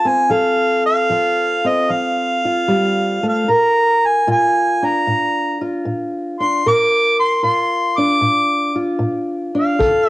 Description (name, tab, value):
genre	acoustic country blues, solo or duo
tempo	76 BPM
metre	4/4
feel	swing 68% on 8ths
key	unclear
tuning	A4 = 438 Hz
part	mellow harmonica	melody	0.0-10.1 s	Eb5 to D6	-16 LUFS	right 1 dB	cassette tape
part	fingerpicked old ladder-braced acoustic guitar	accompaniment	0.0-10.1 s	Bb2 to Bb4	-18 LUFS	left 1 dB	none
part	kick drum	drums	9.8-10.1 s	none	-23 LUFS	equal	cassette tape
room	studio reverb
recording	home recording on cassette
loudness	-14 LUFS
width	side -18 dB against mid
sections	0.0-10.1 A section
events	none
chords	0.0 F; 3.5 Bb